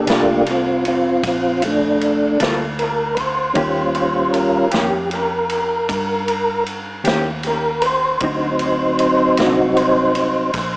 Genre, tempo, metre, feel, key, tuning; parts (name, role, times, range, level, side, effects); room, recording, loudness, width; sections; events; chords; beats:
slow blues; 52 BPM (dotted quarters); 12/8; straight; G minor; A4 = 440 Hz
mellow tonewheel organ; sustained chords; 0.0-10.8 s; F#3 to C5; -16 LUFS; equal; slow rotary speaker, chorus vibrato
vintage muted fingered electric bass; bass; 0.0-10.8 s; Bb1 to G2; -29 LUFS; equal
mellow electric guitar; accompaniment; 0.1-9.6 s; D3 to A4; -25 LUFS; equal; tremolo, dub echo
swinging big-band drum kit; drums; 0.1-10.7 s; kick drum, ride cymbal, snare drum; -24 LUFS; equal; dub echo
wet spring reverb, RT60 2.1 s; echo-heavy mix, cassette tape, small speaker sound; -15 LUFS; side -25 dB against mid
0.0-10.8 A section
tonewheel organ solo 0.0-10.8
0.0 Gm9; 3.6 Eb7; 8.2 D7b9
0.08 1.25 2.41 | 3.57 4.73 5.90 7.06 | 8.22 9.39 10.55